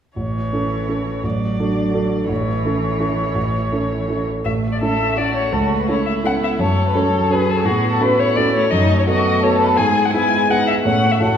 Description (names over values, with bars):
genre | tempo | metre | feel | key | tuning
quick classical-period movement for piano quartet | 169 BPM | 3/4 | straight | A major | A4 = 445 Hz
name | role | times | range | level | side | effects
muted cello | second line | 0.2-11.4 s | E3 to B3 | -25 LUFS | right 4 dB | none
muted violin | second line | 0.2-11.4 s | C#4 to D5 | -24 LUFS | left 2 dB | none
warm concert grand piano | accompaniment | 0.2-11.4 s | A1 to C#5 | -19 LUFS | right 1 dB | none
muted violin | melody | 4.4-11.4 s | G#4 to G#5 | -19 LUFS | left 3 dB | none
room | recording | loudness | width
wet recital hall reverb, RT60 1.4 s | recorded in a church or concert hall | -16 LUFS | side -8 dB against mid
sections
0.2-4.5 A section; 4.5-11.4 B section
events
none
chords
0.2 A; 1.2 D/A; 2.3 A; 5.5 A/C#; 6.6 F#m; 7.7 F#m/A; 8.7 B7/F#; 9.8 E/G#; 10.8 A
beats
| 0.17 0.53 0.89 | 1.24 1.59 1.95 | 2.30 2.65 3.00 | 3.35 3.71 4.08 | 4.45 4.81 5.17 | 5.53 5.89 6.25 | 6.60 6.96 7.31 | 7.66 8.01 8.36 | 8.71 9.06 9.42 | 9.77 10.13 10.48 | 10.84 11.20